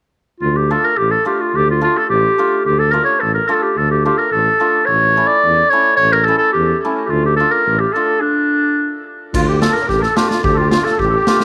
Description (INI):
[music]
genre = klezmer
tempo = 108 BPM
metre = 2/4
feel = straight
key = D harmonic minor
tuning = A4 = 440 Hz
[part]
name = clear clarinet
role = melody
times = 0.4-11.4 s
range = D4 to D5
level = -16 LUFS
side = equal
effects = tape echo
[part]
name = mellow tuba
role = bass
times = 0.4-11.2 s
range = A1 to E2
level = -22 LUFS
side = equal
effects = none
[part]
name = hammered dulcimer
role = accompaniment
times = 0.7-11.4 s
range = A3 to F4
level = -25 LUFS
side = equal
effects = none
[part]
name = musette accordion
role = second line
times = 9.3-11.4 s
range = F4 to C#5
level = -25 LUFS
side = equal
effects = none
[part]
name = street-band drum kit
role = drums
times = 9.3-11.4 s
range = crash cymbal, kick drum, snare drum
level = -22 LUFS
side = equal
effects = none
[sound]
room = light reverb, studio reverb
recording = none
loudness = -15 LUFS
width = mono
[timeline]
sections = 0.4-9.3 A section; 9.3-11.4 A section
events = stop 8.2-9.3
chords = 0.4 Dm; 4.9 A; 7.1 Dm